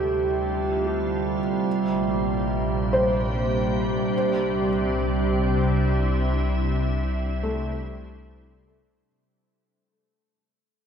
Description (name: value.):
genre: ambient.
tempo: 73 BPM.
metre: 3/4.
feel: straight.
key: C mixolydian.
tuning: A4 = 435 Hz.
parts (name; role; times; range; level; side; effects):
soft additive organ-like pad; sustained chords; 0.0-9.1 s; Bb2 to C5; -26 LUFS; equal; ensemble chorus, built-in reverb.
felt-muted upright piano; arpeggios; 0.0-9.2 s; A3 to C5; -28 LUFS; equal; dub echo, shimmer reverb.
warm sub bass; bass; 0.0-9.0 s; Bb1 to D2; -28 LUFS; left 1 dB; none.
overtone-sweeping drone; drone; 0.0-9.2 s; C3 to G3; -28 LUFS; right 4 dB; chorus, built-in reverb.
room: moderate plate reverb, RT60 2.7 s.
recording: echo-heavy mix.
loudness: -22 LUFS.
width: side -7 dB against mid.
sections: 0.0-9.1 A section.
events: fade-in on ambient pad 0.0-9.1; fade-in on sub bass 0.0-9.1; fade-out on synth drone 0.0-9.1; fade-out 5.8-9.1.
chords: 0.0 Dm7; 1.7 Bb6; 4.1 C.